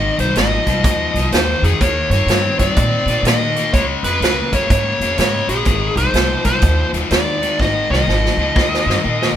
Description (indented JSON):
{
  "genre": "electric blues shuffle",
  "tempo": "125 BPM",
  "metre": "4/4",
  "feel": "swing 64% on 8ths",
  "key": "Ab major",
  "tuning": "A4 = 436 Hz",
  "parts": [
    { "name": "dark smooth lead guitar", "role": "melody", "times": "0.0-9.3 s", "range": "Ab4 to Eb5", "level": "-19 LUFS", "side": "equal", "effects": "overdrive" },
    { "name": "cranked stack guitar", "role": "riff", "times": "0.0-9.3 s", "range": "Ab2 to C4", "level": "-20 LUFS", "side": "left 5 dB", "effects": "overdrive" },
    { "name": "upright bass", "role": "bass", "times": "0.0-9.3 s", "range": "Ab1 to Bb2", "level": "-20 LUFS", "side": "equal", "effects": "none" },
    { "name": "swinging big-band drum kit", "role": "drums", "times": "0.2-9.4 s", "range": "hi-hat, kick drum, snare drum", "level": "-19 LUFS", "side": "right 1 dB", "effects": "none" }
  ],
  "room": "moderate stone room reverb, RT60 1.2 s",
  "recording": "band playing live in one room",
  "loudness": "-14 LUFS",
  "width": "side -10 dB against mid",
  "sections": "0.0-9.4 A section",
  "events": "drum fill 7.6-9.4",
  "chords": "0.0 Ab; 1.8 Eb7; 3.7 Db; 5.7 Ab; 8.6 Eb"
}